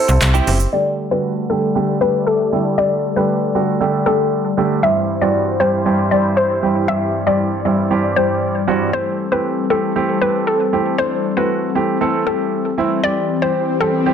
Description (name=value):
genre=dance-pop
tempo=117 BPM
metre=4/4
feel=straight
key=unclear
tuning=A4 = 440 Hz
part: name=hollow square pluck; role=melody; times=0.0-13.9 s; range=A4 to E5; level=-19 LUFS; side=left 3 dB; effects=chorus, low-pass filter, digital delay
part: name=warm baby grand piano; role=accompaniment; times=0.0-14.1 s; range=G2 to A4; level=-19 LUFS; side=right 5 dB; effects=low-pass filter
part: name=sweeping resonant pad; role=sustained chords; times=0.0-14.1 s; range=E3 to C6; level=-22 LUFS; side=left 5 dB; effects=chorus, low-pass filter
part: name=direct-recorded clean electric guitar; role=riff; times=0.1-0.6 s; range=G3 to G4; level=-24 LUFS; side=right 7 dB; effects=analog chorus
part: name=slap-like FM bass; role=bass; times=0.1-0.7 s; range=F#1 to C2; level=-14 LUFS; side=equal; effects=none
part: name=deep house drum kit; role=drums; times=0.1-0.7 s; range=handclaps, hi-hat, shaker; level=-21 LUFS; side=right 1 dB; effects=none
part: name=swell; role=sound effects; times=13.4-14.1 s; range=none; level=-22 LUFS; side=left 6 dB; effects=none
room=light reverb, digital ambience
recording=dense, heavily limited modern master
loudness=-15 LUFS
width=side -8 dB against mid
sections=0.7-14.1 A section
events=break 0.0-0.7; filter sweep 0.7-14.1; swell 13.4-14.1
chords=0.0 C; 0.7 Gsus2; 4.8 C/G; 8.9 Am7; 13.0 C